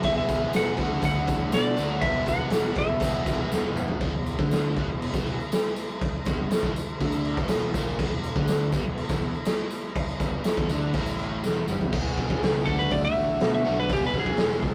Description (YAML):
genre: garage rock duo or trio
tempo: 121 BPM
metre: 4/4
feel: straight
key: E mixolydian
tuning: A4 = 440 Hz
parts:
  - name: clean lap steel guitar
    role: melody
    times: 0.0-3.7, 12.7-14.6 s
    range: G4 to F#5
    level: -30 LUFS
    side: equal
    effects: none
  - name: crunchy overdriven guitar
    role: riff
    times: 0.0-14.7 s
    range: E2 to G#4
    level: -33 LUFS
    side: equal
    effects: none
  - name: fuzz fingered electric bass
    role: bass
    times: 0.0-14.7 s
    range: E1 to B2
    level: -33 LUFS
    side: equal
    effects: overdrive
  - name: raw garage drum kit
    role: drums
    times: 0.0-14.7 s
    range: crash cymbal, hi-hat, kick drum, snare drum, toms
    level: -29 LUFS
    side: equal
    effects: none
  - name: tambourine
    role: percussion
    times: 0.3-11.9 s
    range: none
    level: -48 LUFS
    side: equal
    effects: none
room: light reverb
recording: rough rehearsal-room recording, warm saturation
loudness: -26 LUFS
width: mono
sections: 0.0-4.0 A section; 4.0-11.9 B section; 11.9-14.7 C section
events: drum fill 3.5-4.0, 11.4-11.9; electric slide guitar solo 11.9-14.7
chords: 0.0 E; 0.8 D; 2.0 E; 4.0 Em7; 11.9 E; 12.7 D; 13.9 E